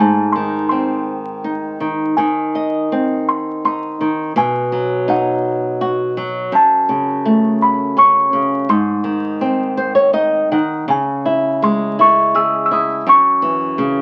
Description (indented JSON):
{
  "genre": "children's music, lullaby",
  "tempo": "83 BPM",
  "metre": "3/4",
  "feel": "rubato",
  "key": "C# harmonic minor from 10.9 s",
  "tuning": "A4 = 440 Hz",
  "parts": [
    { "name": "music box", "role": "melody", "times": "0.0-14.0 s", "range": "F#5 to E6", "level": "-18 LUFS", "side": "equal", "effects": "none" },
    { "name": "flamenco guitar", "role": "accompaniment", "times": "0.0-14.0 s", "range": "F#2 to F#5", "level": "-19 LUFS", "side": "equal", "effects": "none" }
  ],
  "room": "moderate club reverb, RT60 0.7 s",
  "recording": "very old 78 rpm record, vinyl crackle",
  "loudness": "-16 LUFS",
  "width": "mono",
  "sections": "0.0-10.9 A section; 10.9-14.0 B section",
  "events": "nylon-string guitar fill 9.4-10.9",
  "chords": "0.0 G#; 4.4 B; 6.5 F#m; 8.7 G#; 10.9 C#m; 13.1 F#7(no3)"
}